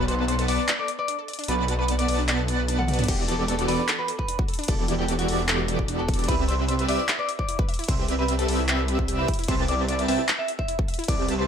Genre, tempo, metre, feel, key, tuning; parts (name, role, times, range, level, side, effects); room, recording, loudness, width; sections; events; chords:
future bass; 150 BPM; 4/4; half-time; E minor; A4 = 440 Hz
airy dreamy lead; arpeggios; 0.0-11.5 s; D6 to A6; -37 LUFS; right 1 dB; chorus, phaser, sidechain pumping, digital delay
wide unison pluck; arpeggios; 0.0-11.4 s; D4 to E5; -36 LUFS; left 1 dB; sidechain pumping, digital delay
big bright polysynth; riff; 0.0-11.5 s; E3 to A5; -28 LUFS; right 1 dB; sidechain pumping
wide detuned saw bass; bass; 0.0-11.5 s; E1 to C2; -27 LUFS; equal; chorus, sidechain pumping
clean electric guitar; melody; 0.1-11.5 s; E4 to F#5; -30 LUFS; equal; sidechain pumping, digital delay
big-room dance drum kit; drums; 0.1-11.4 s; crash cymbal, handclaps, hi-hat, toms; -29 LUFS; left 1 dB
electronic kick drum; drums; 3.1-11.2 s; -26 LUFS; equal
light reverb; -22 LUFS; side -8 dB against mid
0.0-3.1 A section; 3.1-11.5 A section
drop 0.0-3.1, 3.1-11.5; kick drops out 1.5-3.1; drum fill 2.8
0.0 Bm7; 3.1 Em11; 6.3 Cmaj7; 9.3 Am7/C